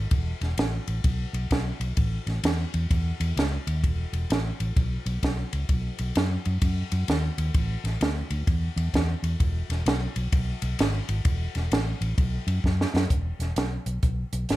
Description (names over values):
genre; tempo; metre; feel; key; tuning
electric blues shuffle; 129 BPM; 4/4; swing 64% on 8ths; E major; A4 = 440 Hz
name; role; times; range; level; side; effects
vintage muted fingered electric bass; bass; 0.0-14.6 s; E1 to F#2; -26 LUFS; equal; none
compact cocktail drum kit; drums; 0.1-14.6 s; hi-hat, kick drum, ride cymbal, snare drum; -27 LUFS; equal; none
room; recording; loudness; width
light reverb; none; -24 LUFS; side -16 dB against mid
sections
0.0-13.1 A section; 13.1-14.6 B section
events
drum fill 12.6-13.1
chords
none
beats
| 0.12 0.58 1.04 1.51 | 1.98 2.44 2.90 3.37 | 3.83 4.30 4.76 5.23 | 5.69 6.16 6.62 7.09 | 7.55 8.01 8.48 8.94 | 9.40 9.87 10.33 10.79 | 11.26 11.72 12.18 12.64 | 13.11 13.57 14.03 14.50